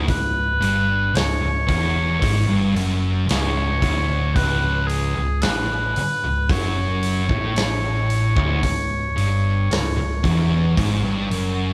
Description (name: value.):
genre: stoner and doom metal.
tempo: 56 BPM.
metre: 4/4.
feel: straight.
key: C# minor.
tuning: A4 = 440 Hz.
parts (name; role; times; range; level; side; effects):
warm oboe; melody; 0.0-11.7 s; G#4 to C#5; -27 LUFS; equal; none.
thick fuzz guitar; riff; 0.0-11.7 s; C#2 to A2; -26 LUFS; equal; distortion.
thick fuzz guitar; riff; 0.0-11.7 s; C#2 to A2; -28 LUFS; equal; distortion.
overdriven picked electric bass; bass; 0.0-11.7 s; C#1 to A1; -28 LUFS; equal; tube saturation.
big rock drum kit; drums; 0.1-11.6 s; hi-hat, kick drum, snare drum; -27 LUFS; equal; none.
room: moderate large studio reverb, RT60 1.3 s.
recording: band playing live in one room.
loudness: -21 LUFS.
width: mono.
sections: 0.0-11.7 A section.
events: none.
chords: 0.0 C#m.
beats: | 0.08 1.15 2.21 3.28 | 4.35 5.42 6.49 7.56 | 8.63 9.70 10.77.